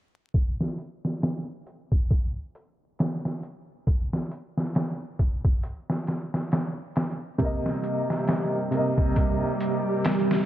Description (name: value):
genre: trip hop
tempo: 68 BPM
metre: 4/4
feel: swing 57% on 16ths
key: unclear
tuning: A4 = 440 Hz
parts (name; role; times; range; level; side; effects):
- trip hop sampler-style drum kit; drums; 0.3-10.5 s; hi-hat, kick drum, snare drum; -25 LUFS; equal; overdrive
- clear upright piano; accompaniment; 7.4-10.5 s; C3 to Eb5; -26 LUFS; equal; tremolo, tape echo
- string machine, cellos; sustained chords; 7.4-10.5 s; G3 to G4; -28 LUFS; right 2 dB; phaser, ensemble chorus
room: light reverb, digital ambience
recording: vinyl crackle, low-pass filter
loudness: -24 LUFS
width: side -12 dB against mid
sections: 0.3-10.5 A section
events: filter sweep 0.3-10.5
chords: 0.3 N.C.; 7.4 Cm7